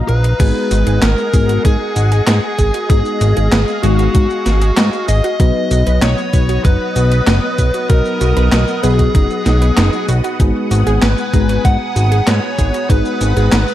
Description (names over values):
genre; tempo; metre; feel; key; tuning
synthwave; 96 BPM; 4/4; straight; unclear; A4 = 442 Hz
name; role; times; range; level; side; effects
lush unison pad; sustained chords; 0.0-13.7 s; Gb3 to D#6; -24 LUFS; equal; chorus, phaser, vintage 12-bit sampler grit, sidechain pumping
mellow FM electric piano; stabs; 0.0-13.7 s; F#3 to Bb5; -22 LUFS; left 3 dB; chorus, phaser
fat analog bass; bass; 0.0-13.6 s; F#1 to Ab2; -14 LUFS; equal; sidechain pumping
fuzz lead guitar; melody; 0.1-13.7 s; Gb4 to Gb5; -20 LUFS; equal; distortion, tape echo
clean 12-bit digital drum machine; drums; 0.1-13.7 s; crash cymbal, handclaps, hi-hat, shaker, snare drum; -19 LUFS; equal; overdrive, gated reverb
wide unison pluck; arpeggios; 0.4-13.6 s; Eb4 to D#5; -25 LUFS; right 4 dB; digital delay
electronic kick drum; drums; 0.4-13.0 s; none; -13 LUFS; equal; overdrive
soft synth bell; second line; 1.0-13.7 s; Gb4 to Gb5; -27 LUFS; left 2 dB; none
room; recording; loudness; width
digital ambience; none; -11 LUFS; side -13 dB against mid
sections
0.4-13.7 A section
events
none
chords
0.4 Abm7; 5.4 B; 10.4 Abm7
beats
| 0.40 1.02 1.65 2.27 | 2.90 3.52 4.15 4.77 | 5.40 6.02 6.65 7.27 | 7.90 8.52 9.15 9.77 | 10.40 11.02 11.65 12.27 | 12.90 13.52